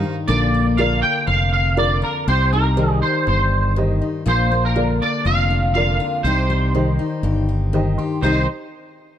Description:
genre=honky-tonk and classic country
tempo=121 BPM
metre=4/4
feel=straight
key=C minor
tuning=A4 = 440 Hz
part: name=clear fiddle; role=second line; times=0.0-0.1, 8.2-8.4 s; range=Eb4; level=-33 LUFS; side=right 4 dB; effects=none
part: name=honky-tonk upright piano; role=accompaniment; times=0.0-8.5 s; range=F4 to C6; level=-26 LUFS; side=right 2 dB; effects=none
part: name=picked steel-string acoustic guitar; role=accompaniment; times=0.0-8.5 s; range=F2 to G4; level=-23 LUFS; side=left 4 dB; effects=none
part: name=fingered electric bass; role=bass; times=0.0-8.5 s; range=F1 to C2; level=-19 LUFS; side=equal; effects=none
part: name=twangy electric guitar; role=melody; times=0.3-8.5 s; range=Bb4 to G5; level=-21 LUFS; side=right 2 dB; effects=ensemble chorus
room=little or no reverb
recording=dark, warm production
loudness=-16 LUFS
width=side -10 dB against mid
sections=0.0-4.3 A section; 4.3-8.2 B section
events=honky-tonk piano fill 7.5-8.2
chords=0.3 Bb; 2.3 Cm; 4.3 Bb; 6.2 Cm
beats=| 0.29 0.79 1.28 1.78 | 2.27 2.77 3.27 3.76 | 4.26 4.75 5.25 5.74 | 6.24 6.74 7.23 7.73 | 8.22

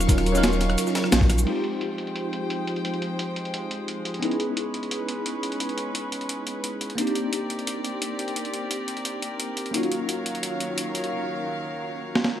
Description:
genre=liquid drum and bass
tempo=174 BPM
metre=4/4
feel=straight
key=F minor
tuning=A4 = 440 Hz
part: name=bell-like tine electric piano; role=accompaniment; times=0.0-12.4 s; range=Gb3 to Bb4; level=-28 LUFS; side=equal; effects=phaser, digital delay
part: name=rich studio string section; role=sustained chords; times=0.0-12.4 s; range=Eb3 to Db6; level=-31 LUFS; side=equal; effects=sidechain pumping
part: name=warm sub bass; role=bass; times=0.0-1.5 s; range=Eb1 to Bb1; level=-24 LUFS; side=equal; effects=tube saturation
part: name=breakbeat sampler-style drum kit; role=drums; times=0.0-12.3 s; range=crash cymbal, hi-hat, rim click, shaker, snare drum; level=-28 LUFS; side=right 1 dB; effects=low-pass filter on hats, low-pass filter on perc, low-pass filter on snare, low-pass filter on cymbals
part: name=breakbeat sampler-style drum kit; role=drums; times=0.1-1.4 s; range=ride cymbal, snare drum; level=-32 LUFS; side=equal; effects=high-pass filter on cymbals, high-pass filter on snare
part: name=electronic kick drum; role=drums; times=0.1-1.3 s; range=none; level=-20 LUFS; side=equal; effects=none
room=light reverb, digital ambience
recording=none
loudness=-24 LUFS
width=side -10 dB against mid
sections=0.0-1.5 A section; 1.5-12.4 B section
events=drop 0.0-1.5; band accent 1.1; filter sweep on drum 1.5-12.4; drum fill 12.2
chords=0.0 Ebm9; 1.5 Fm9; 4.2 Dbm9; 7.0 Cm9; 9.7 Ebm9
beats=| 0.09 0.43 0.78 1.12 | 1.47 1.81 2.16 2.50 | 2.85 3.19 3.54 3.88 | 4.23 4.57 4.92 5.26 | 5.61 5.95 6.30 6.64 | 6.99 7.33 7.68 8.02 | 8.37 8.71 9.05 9.40 | 9.74 10.09 10.43 10.78 | 11.12 11.47 11.81 12.16

